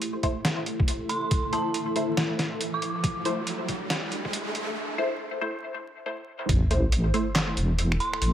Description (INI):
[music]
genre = deep dubstep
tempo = 139 BPM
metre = 4/4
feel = swing 62% on 16ths, half-time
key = A minor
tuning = A4 = 443 Hz
[part]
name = granular cloud pad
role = sustained chords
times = 0.0-8.3 s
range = A3 to A4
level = -34 LUFS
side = equal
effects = built-in reverb
[part]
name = trip hop sampler-style drum kit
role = drums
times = 0.0-8.3 s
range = finger snaps, handclaps, hi-hat, snare drum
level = -29 LUFS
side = equal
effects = none
[part]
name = riser and sub drop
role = sound effects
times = 1.1-8.2 s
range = none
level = -33 LUFS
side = equal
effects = none
[part]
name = filtered dub chord stab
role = stabs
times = 0.2-7.3 s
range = A3 to C5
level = -31 LUFS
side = left 1 dB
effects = phaser, cassette tape, dub echo
[part]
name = electronic kick drum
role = drums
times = 0.2-6.6 s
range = none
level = -27 LUFS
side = equal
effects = none
[part]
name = dark detuned synth bell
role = melody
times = 1.1-3.0, 8.0-8.3 s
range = A5 to D6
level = -32 LUFS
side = right 2 dB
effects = chorus, dub echo
[part]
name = deep soft wobble bass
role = bass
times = 6.5-8.3 s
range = E1 to A1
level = -24 LUFS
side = equal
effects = chorus
[sound]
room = moderate spring reverb, RT60 1.5 s, digital ambience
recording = vinyl crackle, high-pass filter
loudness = -25 LUFS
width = side -11 dB against mid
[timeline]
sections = 0.0-6.5 A section; 6.5-8.3 B section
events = build-up 0.0-6.5; riser 1.1-4.8; break 4.8-6.5; drop 6.5-8.3; impact 6.5-8.2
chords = 0.0 Am